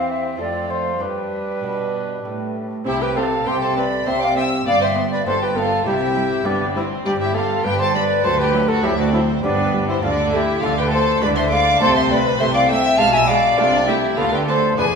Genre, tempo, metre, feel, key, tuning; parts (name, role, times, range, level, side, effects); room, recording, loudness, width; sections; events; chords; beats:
classical, baroque-style concerto movement with solo episodes; 100 BPM; 3/4; straight; C major, A minor from 10.0 s; A4 = 440 Hz
rich chamber violin section; melody; 0.0-15.0 s; G4 to F6; -26 LUFS; left 1 dB
silver concert flute; melody; 0.0-14.9 s; D4 to A5; -20 LUFS; left 1 dB
rich chamber violin section; second line; 0.0-15.0 s; B3 to F5; -23 LUFS; left 2 dB
lute; accompaniment; 0.0-15.0 s; D2 to C5; -30 LUFS; equal
warm chamber viola section; accompaniment; 0.0-14.9 s; F#3 to D4; -27 LUFS; right 1 dB
warm chamber cello section; bass; 0.0-15.0 s; D2 to E3; -25 LUFS; right 2 dB
rich chamber double bass section; bass; 2.9-15.0 s; E1 to D2; -26 LUFS; right 2 dB
wet recital hall reverb, RT60 1.7 s; recorded in a church or concert hall; -16 LUFS; side -5 dB against mid
0.0-2.9 A section; 2.9-15.0 B section
0.4 F; 1.0 G; 2.9 C5; 4.7 G7; 5.9 C; 6.5 G5; 8.2 D7; 9.4 G; 10.0 Bm7b5/D; 11.2 E7/D; 11.8 Am/C; 13.0 E7/B; 13.6 Am/C; 14.2 Bm7b5/D
0.40 | 1.02 1.64 2.25 | 2.86 3.46 4.06 | 4.66 5.26 5.86 | 6.46 7.05 7.65 | 8.25 8.84 9.44 | 10.03 10.63 11.22 | 11.81 12.40 12.99 | 13.58 14.18 14.78